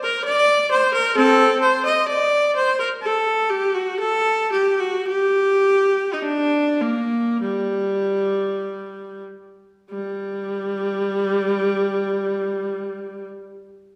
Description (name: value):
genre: classical, baroque-style suite movement for unaccompanied viola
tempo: 45-67 BPM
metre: 4/4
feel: rubato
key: G minor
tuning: A4 = 440 Hz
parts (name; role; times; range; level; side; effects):
- clear viola; solo; 0.0-13.3 s; G3 to Eb5; -21 LUFS; equal; none
room: wet recital hall reverb, RT60 1.6 s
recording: heard from further back in the room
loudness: -20 LUFS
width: mono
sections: 0.0-9.9 A section; 9.9-14.0 B section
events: slowing down 0.0-9.9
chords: none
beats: 0.26 | 1.16 2.08 3.02 4.00 | 5.08 6.23 7.42 8.62 | 9.90 11.14 12.39